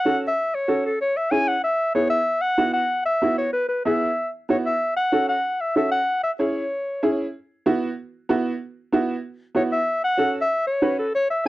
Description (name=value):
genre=latin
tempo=189 BPM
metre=4/4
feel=straight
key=E major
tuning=A4 = 438 Hz
part: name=warm clarinet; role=melody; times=0.0-7.1, 9.6-11.4 s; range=A4 to G#5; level=-21 LUFS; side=left 1 dB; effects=none
part: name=clear upright piano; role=accompaniment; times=0.1-11.5 s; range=B3 to B4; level=-22 LUFS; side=right 1 dB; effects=none
room=light reverb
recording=dry, close 1970s-style studio recording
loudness=-20 LUFS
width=side -17 dB against mid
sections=0.0-2.3 A section; 2.3-11.5 B section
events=none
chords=0.0 F#m; 1.0 C#m; 1.6 E; 2.3 Esus2; 4.8 F#m; 6.1 C#m; 7.3 Esus2; 9.9 F#m